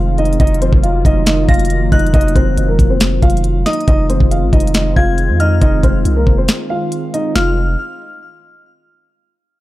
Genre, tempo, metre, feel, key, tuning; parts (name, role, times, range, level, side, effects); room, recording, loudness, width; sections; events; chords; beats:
hip hop, trap; 138 BPM; 4/4; half-time; F phrygian; A4 = 440 Hz
dark grand piano; melody; 0.0-7.6 s; Bb3 to F5; -18 LUFS; equal; low-pass filter, digital delay
warm analog pad; sustained chords; 0.0-7.6 s; Eb3 to F4; -22 LUFS; right 1 dB; chorus
long sustained 808-style bass; bass; 0.0-7.8 s; F1 to F2; -16 LUFS; equal
trap drum kit; drums; 0.2-7.5 s; hi-hat, kick drum, snare drum; -14 LUFS; equal
glassy synth bell; second line; 1.5-7.6 s; Eb6 to Bb6; -24 LUFS; left 3 dB; chorus, digital delay
digital ambience; dark, warm production; -11 LUFS; side -16 dB against mid
0.0-3.9 A section; 3.9-7.4 B section; 7.4-9.1 C section
break 6.5-7.4
0.4 Ebmadd9/F; 3.9 Fm7
| 0.40 0.83 1.27 1.70 | 2.14 2.57 3.01 3.44 | 3.88 4.31 4.75 5.18 | 5.62 6.05 6.49 6.92 | 7.36